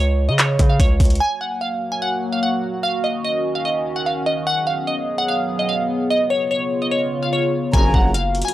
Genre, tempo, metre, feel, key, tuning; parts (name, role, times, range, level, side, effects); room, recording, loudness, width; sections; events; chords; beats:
hip hop, trap; 147 BPM; 4/4; half-time; F# major; A4 = 440 Hz
glassy wavetable pluck; melody; 0.0-8.5 s; C#5 to G#5; -21 LUFS; equal; chorus
distorted 808-style bass; bass; 0.0-1.2, 7.7-8.4 s; F#1 to C#3; -19 LUFS; equal; distortion
trap drum kit; drums; 0.4-1.2, 7.7-8.5 s; handclaps, hi-hat, kick drum; -16 LUFS; equal
dark analog pad; sustained chords; 1.5-8.5 s; C#3 to G#4; -24 LUFS; equal; chorus, phaser
breathy mellow silver concert flute; second line; 7.7-8.1 s; A#5; -26 LUFS; right 2 dB; analog delay
clear brass ensemble; stabs; 7.7-8.1 s; A#1 to C#3; -24 LUFS; left 1 dB
little or no reverb; dry, gritty hardware recording, transformer saturation, cassette tape; -17 LUFS; side -14 dB against mid
0.0-1.2 A section; 1.2-8.5 B section
0.0 N.C.; 1.2 F#; 2.8 D#m7; 4.5 G#m7; 6.1 C#7; 7.7 F#
0.39 0.80 | 1.20 1.61 2.02 2.43 | 2.84 3.25 3.65 4.06 | 4.47 4.88 5.29 5.69 | 6.10 6.51 6.92 7.33 | 7.74 8.14